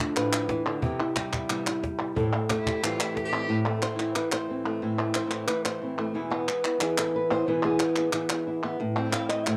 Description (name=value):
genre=flamenco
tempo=181 BPM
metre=4/4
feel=straight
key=A minor, A harmonic minor from 3.5 s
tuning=A4 = 440 Hz
part: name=flamenco guitar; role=melody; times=0.0-9.6 s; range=A2 to F5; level=-30 LUFS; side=equal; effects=none
part: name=flamenco guitar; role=stabs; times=0.0-9.6 s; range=E2 to E4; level=-36 LUFS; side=equal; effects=cassette tape
part: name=palmas hand claps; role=percussion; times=0.0-9.6 s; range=none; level=-33 LUFS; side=equal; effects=none
part: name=cajon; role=percussion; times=0.2-3.3 s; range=none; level=-36 LUFS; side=equal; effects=none
part: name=clear cello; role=second line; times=2.5-3.5 s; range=D4 to G4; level=-36 LUFS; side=equal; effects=cassette tape
room=moderate studio reverb, RT60 0.5 s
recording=home recording on cassette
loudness=-28 LUFS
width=mono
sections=0.0-3.5 A section; 3.5-9.6 B section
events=nylon-string guitar solo 3.5-9.6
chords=0.0 Dmadd9; 0.8 Cmaj7; 2.2 Am7; 3.5 Am; 6.2 E; 8.8 Am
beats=0.17 0.50 | 0.83 1.17 1.50 1.83 | 2.17 2.50 2.83 3.16 | 3.50 3.83 4.16 4.49 | 4.83 5.16 5.49 5.82 | 6.15 6.49 6.82 7.15 | 7.48 7.81 8.15 8.48 | 8.81 9.14 9.47